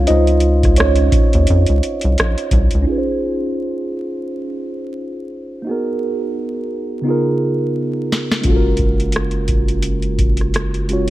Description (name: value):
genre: R&B, neo-soul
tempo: 86 BPM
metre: 4/4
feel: swing 57% on 16ths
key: Db major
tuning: A4 = 440 Hz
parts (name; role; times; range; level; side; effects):
- mellow tine electric piano; accompaniment; 0.0-11.1 s; Db3 to F5; -19 LUFS; right 1 dB; phaser, low-pass filter
- rubbery square bass; bass; 0.0-2.9, 8.5-11.1 s; Gb1 to F2; -16 LUFS; equal; none
- booming analog drum machine; drums; 0.1-2.8, 8.1-11.1 s; hi-hat, kick drum, rim click, snare drum; -17 LUFS; equal; none
room: little or no reverb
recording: vinyl crackle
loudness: -15 LUFS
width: side -15 dB against mid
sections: 0.0-2.9 A section; 2.9-11.1 B section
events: tine electric piano solo 0.0-2.9; filter sweep on tine electric piano 2.9-11.1; drum fill 7.7-8.4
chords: 0.0 Dbmaj7; 5.7 Abm7; 7.0 Db13; 8.4 Gbmaj9